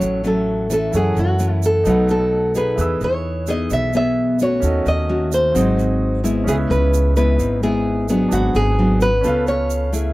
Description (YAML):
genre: bossa nova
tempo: 130 BPM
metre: 4/4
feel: straight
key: C# minor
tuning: A4 = 440 Hz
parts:
  - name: nylon-string guitar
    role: melody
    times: 0.0-9.9 s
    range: F#4 to E5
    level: -20 LUFS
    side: equal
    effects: none
  - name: clear baby grand piano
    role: accompaniment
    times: 0.0-10.1 s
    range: B#3 to E6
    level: -28 LUFS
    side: right 3 dB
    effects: none
  - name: nylon-string guitar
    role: accompaniment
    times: 0.0-10.1 s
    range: F#2 to A4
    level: -20 LUFS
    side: left 1 dB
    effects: none
  - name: upright bass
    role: bass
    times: 0.0-10.1 s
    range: G#1 to F#2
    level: -21 LUFS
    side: equal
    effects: none
  - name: egg shaker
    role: percussion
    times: 0.0-10.1 s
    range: none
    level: -35 LUFS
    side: right 16 dB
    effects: none
room: light reverb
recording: dry, close 1970s-style studio recording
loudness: -15 LUFS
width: side -18 dB against mid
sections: 0.0-10.1 A section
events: none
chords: 0.0 Dmaj7 (rootless); 0.9 F#m7; 1.9 B7; 2.8 Emaj7; 4.6 D#m7b5; 5.6 G#7; 6.5 C#m7; 8.3 G#m7b5; 9.2 C#7b13